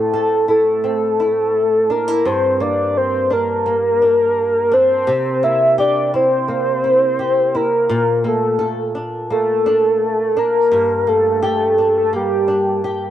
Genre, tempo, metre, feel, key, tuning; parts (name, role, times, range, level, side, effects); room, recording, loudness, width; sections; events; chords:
indie pop; 85 BPM; 4/4; straight; G dorian; A4 = 440 Hz
soft octave-layered synth lead; melody; 0.0-12.8 s; G4 to E5; -15 LUFS; equal; analog chorus, tape echo
flamenco guitar; accompaniment; 0.0-13.1 s; G2 to A4; -23 LUFS; left 1 dB; lush chorus, vibrato effect, cassette tape
light reverb; home recording on cassette; -14 LUFS; side -11 dB against mid
0.0-13.1 A section
0.0 Am; 2.2 Gm; 5.1 C7; 7.9 Bbmaj7; 10.7 Gm